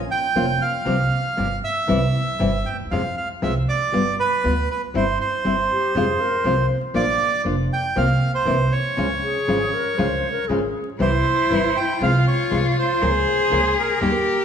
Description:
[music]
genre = tango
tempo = 119 BPM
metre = 4/4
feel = rubato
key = unclear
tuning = A4 = 440 Hz
[part]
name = upright bass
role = bass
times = 0.0-14.2 s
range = F1 to F2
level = -24 LUFS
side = right 1 dB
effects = none
[part]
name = bandoneon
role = melody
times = 0.1-14.4 s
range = Bb4 to G5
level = -22 LUFS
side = right 4 dB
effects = none
[part]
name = nylon-string guitar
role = accompaniment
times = 0.4-14.1 s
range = C3 to Bb4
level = -24 LUFS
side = left 2 dB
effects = none
[part]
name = hollow concert flute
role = second line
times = 5.7-10.9 s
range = G4 to C5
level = -26 LUFS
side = left 4 dB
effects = none
[part]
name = rich cello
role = second line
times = 11.0-14.4 s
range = E4 to Ab4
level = -21 LUFS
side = left 4 dB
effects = none
[sound]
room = wet recital hall reverb, RT60 1.7 s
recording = recorded in a church or concert hall, vinyl crackle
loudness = -18 LUFS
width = side -8 dB against mid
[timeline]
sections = 0.0-14.4 A section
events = none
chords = 0.0 N.C.; 0.9 Csus4; 1.9 C; 2.9 Fm; 3.9 G7; 4.9 C/G; 5.9 Fm; 6.9 Bb; 8.0 C7sus4; 8.5 C7; 9.0 Db; 11.0 C; 12.0 Fm/C; 13.0 Bbm/Db

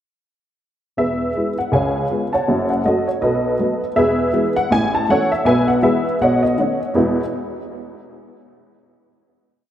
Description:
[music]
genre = jazz, stride piano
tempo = 160 BPM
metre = 4/4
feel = swing 60% on 8ths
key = E major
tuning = A4 = 440 Hz
[part]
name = honky-tonk upright piano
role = solo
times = 1.0-7.2 s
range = E1 to A5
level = -16 LUFS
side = equal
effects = tape echo
[sound]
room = wet plate reverb, RT60 2.6 s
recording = dreamy mix soaked in reverb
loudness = -16 LUFS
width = side -11 dB against mid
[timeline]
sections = 1.0-7.0 A section; 7.0-8.5 final chord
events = none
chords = 1.0 E; 1.7 C#7; 2.5 F#m; 3.2 B7; 4.0 E; 4.7 A; 5.5 E/B; 6.2 B9; 7.0 E

